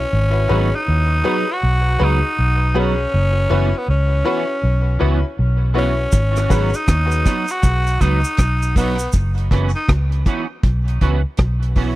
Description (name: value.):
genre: dub reggae.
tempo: 80 BPM.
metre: 4/4.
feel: swing 63% on 16ths.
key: G# minor.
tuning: A4 = 440 Hz.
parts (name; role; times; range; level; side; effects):
growling tenor saxophone; melody; 0.0-9.9 s; B3 to F#4; -22 LUFS; equal; tape echo.
vintage muted fingered electric bass; bass; 0.0-12.0 s; F#1 to D#2; -17 LUFS; equal; none.
semi-hollow electric guitar; accompaniment; 0.5-12.0 s; E3 to F#4; -26 LUFS; right 5 dB; ensemble chorus, tape echo.
bright grand piano; stabs; 0.5-6.7 s; E4 to B4; -26 LUFS; left 6 dB; tape echo.
deep reggae drum kit; drums; 6.1-12.0 s; hi-hat, kick drum, rim click; -16 LUFS; equal; none.
cabasa; percussion; 6.1-9.3 s; none; -34 LUFS; right 4 dB; tape echo.
room: small room ambience.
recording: dry, close 1970s-style studio recording.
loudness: -15 LUFS.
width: side -17 dB against mid.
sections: 0.0-12.0 A section.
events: break 0.0-6.1; part muted 0.1-6.1, 9.1-12.0.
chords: 0.1 G#m7; 3.1 F#7sus4; 6.1 G#m7; 9.1 F#7sus4.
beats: | 0.12 0.87 1.62 2.37 | 3.12 3.88 4.63 5.38 | 6.13 6.88 7.63 8.38 | 9.13 9.89 10.64 11.39.